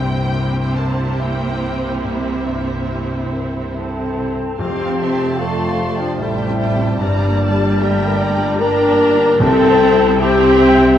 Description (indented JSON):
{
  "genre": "cinematic, emotional film score for orchestra",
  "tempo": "73 BPM",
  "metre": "3/4",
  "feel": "uneven beats, rubato",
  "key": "F major from 4.6 s",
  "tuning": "A4 = 441 Hz",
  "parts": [
    { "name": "rich studio violin section", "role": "melody", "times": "0.0-11.0 s", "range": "E5 to C6", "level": "-31 LUFS", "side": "left 2 dB", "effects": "none" },
    { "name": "warm studio violin section", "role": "second line", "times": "0.0-11.0 s", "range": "E4 to Bb5", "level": "-27 LUFS", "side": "equal", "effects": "none" },
    { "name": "felt-muted upright piano", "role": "accompaniment", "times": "0.0-11.0 s", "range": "C2 to G5", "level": "-24 LUFS", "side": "left 1 dB", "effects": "none" },
    { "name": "rich studio viola section", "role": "accompaniment", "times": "0.0-11.0 s", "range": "F3 to D4", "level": "-22 LUFS", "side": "right 2 dB", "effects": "none" },
    { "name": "concert harp", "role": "arpeggios", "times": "0.0-11.0 s", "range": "F2 to C5", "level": "-26 LUFS", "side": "left 4 dB", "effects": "none" },
    { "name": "rich studio double bass section", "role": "bass", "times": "0.0-11.0 s", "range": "F1 to C2", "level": "-25 LUFS", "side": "right 3 dB", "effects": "none" },
    { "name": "warm studio cello section", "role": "bass", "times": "0.0-11.0 s", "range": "F2 to C3", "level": "-24 LUFS", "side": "right 2 dB", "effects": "none" },
    { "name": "hollow flute section", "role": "second line", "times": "3.7-11.0 s", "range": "D5 to Bb5", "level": "-26 LUFS", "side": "equal", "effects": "none" },
    { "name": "warm clarinet", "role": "second line", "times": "3.7-10.7 s", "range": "F3 to D4", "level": "-24 LUFS", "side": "equal", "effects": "none" },
    { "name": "mellow French horn section", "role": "sustained chords", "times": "3.8-11.0 s", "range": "D4 to Bb4", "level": "-17 LUFS", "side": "left 3 dB", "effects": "none" },
    { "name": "timpani", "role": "percussion", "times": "4.6-10.6 s", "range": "F2 to C3", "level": "-27 LUFS", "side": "right 1 dB", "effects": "none" }
  ],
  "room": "wet scoring stage reverb, RT60 1.9 s",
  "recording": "worn, warbling old tape, cassette tape, warbly pitch drift",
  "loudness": "-14 LUFS",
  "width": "side -10 dB against mid",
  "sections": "0.0-4.6 A section; 4.6-11.0 B section",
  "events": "none",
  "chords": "0.0 C7; 4.6 Fadd9; 7.0 Gmadd9; 9.4 C"
}